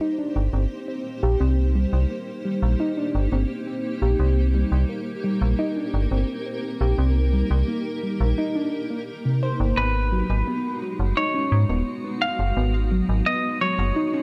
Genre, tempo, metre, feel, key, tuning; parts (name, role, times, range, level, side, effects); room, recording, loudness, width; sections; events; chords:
IDM; 86 BPM; 4/4; straight; A4 = 440 Hz
granular cloud pad; sustained chords; 0.0-14.2 s; Ab3 to C5; -33 LUFS; equal; built-in reverb, vintage 12-bit sampler grit
harp-like synth pluck; arpeggios; 0.0-14.2 s; C3 to C5; -29 LUFS; equal; chorus, digital delay
metallic FM bass; bass; 0.4-13.9 s; Eb1 to Ab2; -23 LUFS; equal; tube saturation
semi-hollow electric guitar; melody; 9.8-14.2 s; Cb5 to F5; -28 LUFS; equal; tape echo
light reverb, digital ambience; -23 LUFS; mono
0.0-14.2 A section
0.0 Cm7; 9.8 Abm7